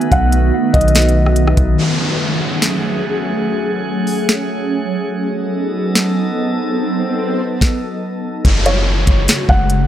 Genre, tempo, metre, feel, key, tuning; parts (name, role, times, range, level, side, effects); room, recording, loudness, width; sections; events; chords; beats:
hip hop, atmospheric cloud-rap; 144 BPM; 4/4; half-time; F# dorian; A4 = 441 Hz
felt-muted upright piano; melody; 0.0-1.7, 8.7-9.9 s; C#5 to F#5; -19 LUFS; left 1 dB; low-pass filter, analog delay
shimmering ambient pad; sustained chords; 0.0-9.9 s; C#3 to A4; -18 LUFS; right 1 dB; chorus, built-in reverb, phaser, sidechain pumping, low-pass filter
trap drum kit; drums; 0.0-9.8 s; hi-hat, kick drum, rim click, snare drum; -15 LUFS; equal
drifting glass-harmonics texture; texture; 0.0-8.4 s; A3 to F#5; -27 LUFS; equal; chorus, built-in reverb
long sustained 808-style bass; bass; 0.1-1.8, 8.4-9.9 s; F#1 to B1; -15 LUFS; equal
downlifter and swell; sound effects; 1.8-9.9 s; -23 LUFS; equal
little or no reverb; dry, gritty hardware recording, transformer saturation; -14 LUFS; side -11 dB against mid
0.0-1.8 A section; 1.8-8.4 B section; 8.4-9.9 A section
filter sweep on ambient pad 1.8-8.4; swell 6.6-8.4
0.0 B7; 1.8 F#madd9; 5.1 B7; 8.4 F#madd9
| 0.12 0.53 0.95 1.36 | 1.78 2.20 2.62 3.03 | 3.45 3.87 4.28 4.70 | 5.12 5.53 5.95 6.37 | 6.78 7.20 7.62 8.03 | 8.45 8.87 9.28 9.70